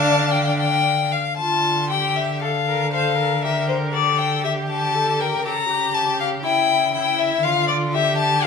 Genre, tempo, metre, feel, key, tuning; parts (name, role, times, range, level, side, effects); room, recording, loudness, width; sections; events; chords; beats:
quick classical-period movement for string quartet; 119 BPM; 4/4; rubato; D minor; A4 = 440 Hz
clear violin; melody; 0.0-8.5 s; C5 to A#5; -20 LUFS; left 6 dB
rich violin; second line; 0.0-8.5 s; E4 to F5; -27 LUFS; left 1 dB
clear viola; accompaniment; 0.0-8.5 s; D4 to C5; -26 LUFS; equal
rich cello; bass; 0.0-8.5 s; C#3 to D3; -25 LUFS; right 1 dB
wet stone room reverb, RT60 1.0 s; minimal, uncompressed stereo recording; -18 LUFS; side -5 dB against mid
0.0-1.4 A section; 1.4-8.5 A section
0.0 Dm; 3.4 C7sus2/D (rootless); 5.4 C#dim7; 7.4 Dm
0.32 0.86 | 1.39 1.90 2.42 2.93 | 3.43 3.93 4.44 4.94 | 5.44 5.94 6.44 6.94 | 7.44 7.94 8.43